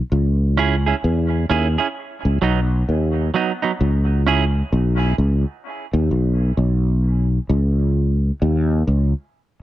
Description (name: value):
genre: dub reggae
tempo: 65 BPM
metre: 4/4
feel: swing 62% on 16ths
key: C# minor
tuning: A4 = 441 Hz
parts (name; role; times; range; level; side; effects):
- sustaining fretless electric bass; bass; 0.1-9.1 s; B1 to E2; -17 LUFS; equal; analog chorus
- semi-hollow electric guitar; accompaniment; 0.6-4.4 s; F#3 to G#4; -22 LUFS; right 7 dB; dub echo
room: little or no reverb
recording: dark, warm production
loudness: -17 LUFS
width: side -14 dB against mid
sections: 0.0-9.6 A section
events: none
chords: 0.1 C#m; 2.0 B; 3.8 N.C.; 7.5 C#sus2